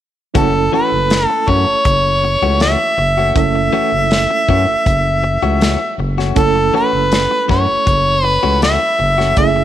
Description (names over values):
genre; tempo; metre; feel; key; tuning
straight-eighth soul blues; 80 BPM; 4/4; straight; F# minor; A4 = 444 Hz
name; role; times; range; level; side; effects
bright reed electric piano; accompaniment; 0.3-9.6 s; A3 to A4; -22 LUFS; right 14 dB; fast tremolo
direct-recorded clean electric guitar; stabs; 0.3-9.6 s; E3 to F#4; -23 LUFS; left 10 dB; none
warm soul drum kit; drums; 0.3-9.6 s; hi-hat, kick drum, snare drum; -18 LUFS; equal; none
clear harmonica; melody; 0.4-9.6 s; A4 to E5; -15 LUFS; equal; overdrive
growling FM bass; bass; 0.4-9.6 s; F#1 to F#2; -18 LUFS; equal; none
room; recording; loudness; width
light reverb, small room ambience; 1960s-style stereo with parts hard left and right; -12 LUFS; side -11 dB against mid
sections
0.4-9.6 A section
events
none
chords
0.4 F#m7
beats
| 0.35 1.11 1.86 2.61 | 3.36 4.11 4.86 5.61 | 6.37 7.12 7.87 8.62 | 9.37